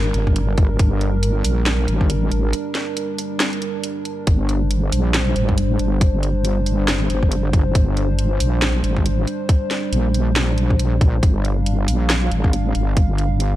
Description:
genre	deep dubstep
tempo	138 BPM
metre	4/4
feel	swing 59% on 16ths, half-time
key	G phrygian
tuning	A4 = 441 Hz
part	dark analog pad	sustained chords	0.0-13.6 s	G3 to F5	-24 LUFS	right 1 dB	chorus
part	wobble bass	bass	0.0-13.6 s	G1 to Bb1	-19 LUFS	equal	chorus
part	garage drum kit	drums	0.1-13.5 s	hi-hat, snare drum	-24 LUFS	equal	overdrive, small room ambience
part	electronic kick drum	drums	0.3-13.1 s	none	-16 LUFS	equal	overdrive, small room ambience
room	digital ambience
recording	dark, warm production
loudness	-16 LUFS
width	side -14 dB against mid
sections	0.0-13.6 A section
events	break 2.5-4.3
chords	0.0 G5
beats	0.36 | 0.79 1.23 1.66 2.10 | 2.53 2.97 3.40 3.84 | 4.27 4.71 5.14 5.58 | 6.01 6.45 6.88 7.32 | 7.75 8.19 8.62 9.05 | 9.49 9.93 10.36 10.79 | 11.23 11.66 12.10 12.53 | 12.97 13.40

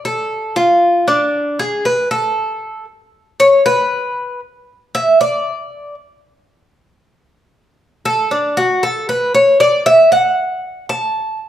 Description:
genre	latin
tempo	116 BPM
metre	4/4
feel	straight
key	unclear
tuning	A4 = 438 Hz
part	Cuban tres	solo	0.0-11.4 s	D4 to A5	-13 LUFS	equal	none
room	moderate large studio reverb, RT60 1.2 s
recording	band playing live in one room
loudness	-12 LUFS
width	side -11 dB against mid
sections	0.0-1.9 A section; 1.9-11.5 B section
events	Cuban tres solo 1.9-11.5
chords	none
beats	0.30 0.82 1.33 | 1.85 2.37 2.88 3.40 | 3.92 4.43 4.95 5.47 | 5.98 6.50 7.02 7.53 | 8.05 8.57 9.08 9.60 | 10.12 10.63 11.15

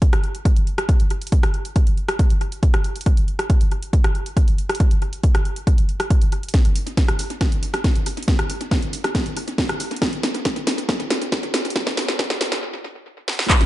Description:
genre	techno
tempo	138 BPM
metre	4/4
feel	straight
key	none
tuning	none
part	electronic kick drum	drums	0.0-13.6 s	none	-18 LUFS	equal	none
part	techno drum kit	drums	0.0-13.7 s	crash cymbal, handclaps, hi-hat, rim click, snare drum	-23 LUFS	equal	tape echo
room	light reverb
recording	echo-heavy mix, high-pass filter, nothing above 10.7 kHz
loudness	-18 LUFS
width	side -16 dB against mid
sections	0.0-6.5 A section; 6.5-13.5 B section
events	build-up 6.5-13.5; drum fill 6.5-12.6, 13.3; filter sweep 6.5-13.5; stop 12.6-13.5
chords	none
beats	0.02 0.45 0.89 | 1.32 1.76 2.19 2.63 | 3.06 3.50 3.93 4.37 | 4.80 5.24 5.67 6.11 | 6.54 6.97 7.41 7.84 | 8.28 8.71 9.15 9.58 | 10.02 10.45 10.89 11.32 | 11.76 12.19 12.63 13.06 | 13.50

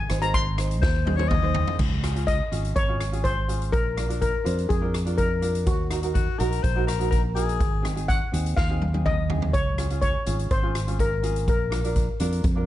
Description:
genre	calypso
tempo	124 BPM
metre	4/4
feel	straight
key	Db major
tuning	A4 = 440 Hz
part	steel pan	melody	0.0-11.9 s	Gb4 to C6	-28 LUFS	left 3 dB	none
part	fingered electric bass	bass	0.0-12.7 s	Ab1 to F2	-26 LUFS	equal	none
part	tenor ukulele	accompaniment	0.1-12.7 s	C4 to C5	-32 LUFS	right 2 dB	none
part	street-band drum kit	drums	0.1-12.6 s	crash cymbal, hi-hat, kick drum, rim click, snare drum, toms	-26 LUFS	equal	none
part	clear alto saxophone	second line	0.8-1.8, 6.1-7.9 s	Gb4 to Eb5	-30 LUFS	left 10 dB	none
room	small room reverb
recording	nothing above 10.5 kHz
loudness	-22 LUFS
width	side -13 dB against mid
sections	0.0-1.8 A section; 1.8-12.7 B section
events	drum fill 0.8-1.8, 8.6-9.5; steel pan solo 1.8-12.7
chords	0.0 Ab; 1.8 Db; 3.7 Bb7; 5.7 Ebm; 7.6 Ab; 9.5 Db; 11.5 Bb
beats	0.34 0.82 1.31 | 1.79 2.28 2.76 3.25 | 3.73 4.21 4.70 5.18 | 5.67 6.15 6.64 7.12 | 7.61 8.09 8.57 9.06 | 9.54 10.03 10.51 10.99 | 11.48 11.96 12.45

